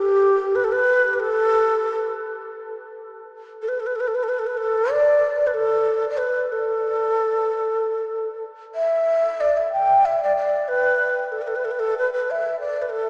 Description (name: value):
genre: chinese traditional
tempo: 95 BPM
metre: 4/4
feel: rubato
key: unclear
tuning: A4 = 441 Hz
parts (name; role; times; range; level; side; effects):
- breathy mellow xiao; solo; 0.0-13.1 s; G4 to G5; -19 LUFS; equal; none
room: wet cathedral reverb, RT60 5.6 s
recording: recorded in a church or concert hall, small speaker sound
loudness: -18 LUFS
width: side -32 dB against mid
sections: 0.0-13.1 A section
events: none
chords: none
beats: 0.54 | 1.17 1.80 2.42 3.03 | 3.65 4.28 4.90 5.54 | 6.17 6.81 7.45 8.11 | 8.76 9.40 10.04 10.68 | 11.32 11.95 12.56